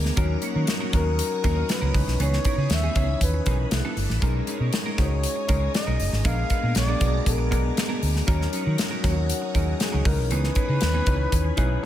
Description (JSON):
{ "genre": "polished 1980s jazz-funk pop", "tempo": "118 BPM", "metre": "4/4", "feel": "straight", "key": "unclear", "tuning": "A4 = 440 Hz", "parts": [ { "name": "overdriven tine electric piano", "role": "accompaniment", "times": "0.0-11.9 s", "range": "D3 to C#5", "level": "-30 LUFS", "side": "left 4 dB", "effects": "wide subtle chorus, slapback echo" }, { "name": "phased string machine", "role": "sustained chords", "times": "0.0-11.9 s", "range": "B3 to E6", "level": "-37 LUFS", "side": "equal", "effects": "ensemble chorus, phaser" }, { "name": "clean electric guitar", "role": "riff", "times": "0.0-11.9 s", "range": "E3 to C#5", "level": "-34 LUFS", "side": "right 5 dB", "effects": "analog chorus, slapback echo" }, { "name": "vintage muted fingered electric bass", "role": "bass", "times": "0.0-11.8 s", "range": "F#1 to D#3", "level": "-24 LUFS", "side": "equal", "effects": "none" }, { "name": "modern studio drum kit", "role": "drums", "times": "0.1-11.7 s", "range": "hi-hat, kick drum, snare drum", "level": "-26 LUFS", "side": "equal", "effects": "none" }, { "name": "breathy flugelhorn", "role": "melody", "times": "1.0-11.9 s", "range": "F#4 to E#5", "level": "-31 LUFS", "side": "left 1 dB", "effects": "slapback echo" } ], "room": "light reverb, studio reverb", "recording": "none", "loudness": "-21 LUFS", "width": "side -12 dB against mid", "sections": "0.0-11.9 A section", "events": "none", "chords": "0.2 D#m7; 1.9 C#m9; 3.7 Cmaj13; 4.2 Bmaj13; 6.2 A#7b9; 8.3 D#m7; 10.1 C#m9" }